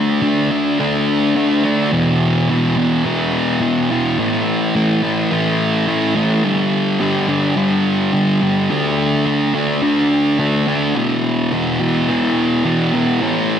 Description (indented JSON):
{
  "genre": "rock",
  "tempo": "106 BPM",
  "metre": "4/4",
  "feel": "straight",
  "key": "E minor",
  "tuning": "A4 = 436 Hz",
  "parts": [
    { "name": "thick fuzz guitar", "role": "solo", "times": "0.0-13.6 s", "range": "E2 to D4", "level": "-14 LUFS", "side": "equal", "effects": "distortion, slapback echo, tape echo" }
  ],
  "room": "wet lush hall reverb, RT60 2.1 s",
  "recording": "big arena sound",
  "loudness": "-14 LUFS",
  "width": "side -8 dB against mid",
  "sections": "0.0-13.6 A section",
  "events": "none",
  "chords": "0.0 D5; 1.9 E5; 4.2 A5; 6.4 G5; 8.7 D5; 11.0 E5"
}